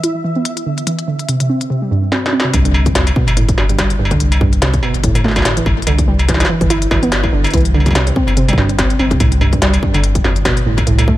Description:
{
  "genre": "IDM",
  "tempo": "144 BPM",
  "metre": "4/4",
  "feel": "swing 56% on 16ths",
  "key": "unclear",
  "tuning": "A4 = 441 Hz",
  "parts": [
    { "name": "warbly dusty pluck", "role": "arpeggios", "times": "0.0-11.1 s", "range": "F2 to E4", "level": "-16 LUFS", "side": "right 2 dB", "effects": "chorus, digital delay" },
    { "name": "industrial drum kit", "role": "drums", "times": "0.0-11.1 s", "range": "hi-hat, snare drum, struck metal", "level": "-18 LUFS", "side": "left 1 dB", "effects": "ping-pong delay" },
    { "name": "flickering grainy texture", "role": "texture", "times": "0.0-1.7 s", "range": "E5", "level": "-30 LUFS", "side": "right 1 dB", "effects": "built-in reverb" },
    { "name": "warm sub bass", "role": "bass", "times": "2.5-11.2 s", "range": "G1 to C2", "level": "-16 LUFS", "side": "equal", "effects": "none" },
    { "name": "electronic kick drum", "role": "drums", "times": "2.5-11.2 s", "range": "none", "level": "-18 LUFS", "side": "equal", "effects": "none" }
  ],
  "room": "little or no reverb",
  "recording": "none",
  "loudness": "-12 LUFS",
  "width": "side -15 dB against mid",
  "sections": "0.0-2.5 A section; 2.5-11.2 B section",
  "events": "drum fill 2.1-2.5",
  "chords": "0.0 E5; 0.9 C; 2.5 Gsus4; 4.2 Am; 5.9 E5; 7.5 C5; 9.2 Gsus4",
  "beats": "0.04 0.45 | 0.87 1.29 1.70 2.12 | 2.54 2.95 3.37 3.79 | 4.20 4.62 5.04 5.45 | 5.87 6.29 6.70 7.12 | 7.54 7.95 8.37 8.79 | 9.20 9.62 10.04 10.45 | 10.87"
}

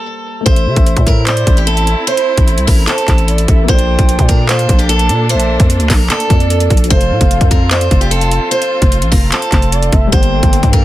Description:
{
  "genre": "hip hop, trap",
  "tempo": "149 BPM",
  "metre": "4/4",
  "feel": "half-time",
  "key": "A phrygian",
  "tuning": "A4 = 443 Hz",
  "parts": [
    { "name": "picked steel-string acoustic guitar", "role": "melody", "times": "0.0-10.8 s", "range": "G4 to C5", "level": "-17 LUFS", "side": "right 1 dB", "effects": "low-pass filter, tape echo" },
    { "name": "dark concert grand piano", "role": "accompaniment", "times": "0.0-10.8 s", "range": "F3 to E5", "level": "-24 LUFS", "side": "left 6 dB", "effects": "low-pass filter" },
    { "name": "gliding portamento lead", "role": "second line", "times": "0.5-10.8 s", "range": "C5 to G5", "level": "-22 LUFS", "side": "right 4 dB", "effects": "chorus, phaser, tape echo" },
    { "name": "muted studio string section", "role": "sustained chords", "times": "0.5-10.8 s", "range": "G3 to A4", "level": "-22 LUFS", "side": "left 1 dB", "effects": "none" },
    { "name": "growling 808-style bass", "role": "bass", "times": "0.5-10.8 s", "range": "F1 to C3", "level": "-14 LUFS", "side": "equal", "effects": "none" },
    { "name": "trap drum kit", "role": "drums", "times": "0.5-10.8 s", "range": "handclaps, hi-hat, kick drum", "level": "-12 LUFS", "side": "equal", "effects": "none" }
  ],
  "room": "studio ambience",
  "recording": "dense, heavily limited modern master",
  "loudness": "-9 LUFS",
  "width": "side -15 dB against mid",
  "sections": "0.5-10.8 A section",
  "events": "break 0.0-0.5",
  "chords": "0.5 Am; 3.7 Bbmaj7; 6.9 F; 10.1 Gmadd9",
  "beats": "0.06 | 0.46 0.86 1.27 1.67 | 2.07 2.48 2.88 3.28 | 3.68 4.09 4.49 4.89 | 5.29 5.70 6.10 6.50 | 6.91 7.31 7.71 8.11 | 8.52 8.92 9.32 9.72 | 10.13 10.53"
}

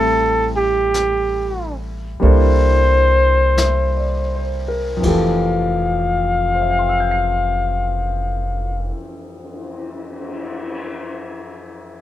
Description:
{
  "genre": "jazz ballad",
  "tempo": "40-50 BPM",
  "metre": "4/4",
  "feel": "swing 67% on 8ths",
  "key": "F major",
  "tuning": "A4 = 445 Hz",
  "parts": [
    { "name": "clear flugelhorn", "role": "melody", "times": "0.0-8.9 s", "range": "G4 to F5", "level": "-18 LUFS", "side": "left 2 dB", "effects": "none" },
    { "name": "clear concert grand piano", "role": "accompaniment", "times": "0.0-12.0 s", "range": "F2 to C7", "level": "-23 LUFS", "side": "equal", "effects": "none" },
    { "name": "upright bass", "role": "bass", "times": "0.0-8.9 s", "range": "F1 to C2", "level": "-20 LUFS", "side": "right 1 dB", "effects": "none" },
    { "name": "jazz brush drum kit", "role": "drums", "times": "0.9-10.7 s", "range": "brushed snare drum, cymbal swell, hi-hat, kick drum, ride cymbal, snare drum", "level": "-30 LUFS", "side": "left 2 dB", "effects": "none" }
  ],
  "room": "light reverb",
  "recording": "minimal, uncompressed stereo recording",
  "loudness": "-15 LUFS",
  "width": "side -12 dB against mid",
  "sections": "0.0-5.0 A section; 5.0-11.0 B section",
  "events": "slowing down 0.0-5.0",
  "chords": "0.0 Am7; 2.2 C13; 5.0 Fmaj9",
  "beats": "0.93 2.21 3.57 | 5.03 6.53 8.03 9.52"
}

